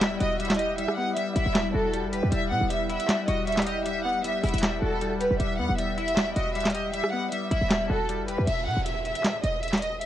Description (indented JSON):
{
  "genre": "hip hop, trap",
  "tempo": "156 BPM",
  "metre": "4/4",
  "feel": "half-time",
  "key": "E harmonic minor",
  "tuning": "A4 = 440 Hz",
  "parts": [
    { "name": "dark studio violin section", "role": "melody", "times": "0.0-10.1 s", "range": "A4 to F#5", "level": "-28 LUFS", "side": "right 1 dB", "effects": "digital delay" },
    { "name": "semi-hollow electric guitar", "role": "accompaniment", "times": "0.0-8.5 s", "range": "G3 to G4", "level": "-32 LUFS", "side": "left 4 dB", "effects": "analog chorus" },
    { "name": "warm analog pad", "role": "sustained chords", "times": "0.0-8.4 s", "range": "G3 to F#5", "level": "-35 LUFS", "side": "left 1 dB", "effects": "chorus" },
    { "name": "short 808-style bass", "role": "bass", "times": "0.0-10.1 s", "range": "E1 to B2", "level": "-30 LUFS", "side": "equal", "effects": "none" },
    { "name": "booming analog drum machine", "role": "drums", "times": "0.0-10.1 s", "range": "handclaps, hi-hat, rim click, snare drum", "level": "-28 LUFS", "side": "equal", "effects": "none" },
    { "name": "downlifter", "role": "sound effects", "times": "8.5-10.1 s", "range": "none", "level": "-37 LUFS", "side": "right 2 dB", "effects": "none" }
  ],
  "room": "light reverb, digital ambience",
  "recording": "worn, warbling old tape, cassette tape, warbly pitch drift",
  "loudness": "-24 LUFS",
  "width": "side -12 dB against mid",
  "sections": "0.0-8.5 A section; 8.5-10.1 B section",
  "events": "none",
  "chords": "0.0 Emadd9; 8.5 E5"
}